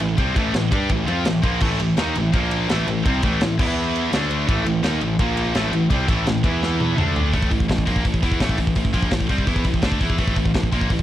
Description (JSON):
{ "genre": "heavy metal", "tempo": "168 BPM", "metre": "4/4", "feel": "straight", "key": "A minor", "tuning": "A4 = 440 Hz", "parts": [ { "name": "distorted electric guitar", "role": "riff", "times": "0.0-7.3 s", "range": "A2 to G4", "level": "-26 LUFS", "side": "equal", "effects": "overdrive" }, { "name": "heavy high-gain guitar", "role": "riff", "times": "0.0-11.0 s", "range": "A2 to G4", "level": "-26 LUFS", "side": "left 9 dB", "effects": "distortion" }, { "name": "heavy high-gain guitar", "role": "riff", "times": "0.0-11.0 s", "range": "A2 to G4", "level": "-26 LUFS", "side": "right 9 dB", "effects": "distortion" }, { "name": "fuzz picked electric bass", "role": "bass", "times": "0.0-11.0 s", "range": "A1 to G2", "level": "-24 LUFS", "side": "equal", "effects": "overdrive, tube saturation" }, { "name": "tight metal drum kit", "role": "drums", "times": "0.0-11.0 s", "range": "crash cymbal, hi-hat, kick drum, ride cymbal, snare drum, toms", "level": "-22 LUFS", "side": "equal", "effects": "none" } ], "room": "little or no reverb", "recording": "dry, gritty hardware recording, cassette tape", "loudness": "-18 LUFS", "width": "side -12 dB against mid", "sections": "0.0-7.3 A section; 7.3-11.0 B section", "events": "drum fill 6.6-7.3", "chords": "0.0 Am; 2.3 Bb5; 2.7 Am; 3.6 E5; 4.1 D5; 4.5 A5; 5.2 Bb5; 5.5 Am; 6.4 E5; 7.0 D5; 7.3 Am" }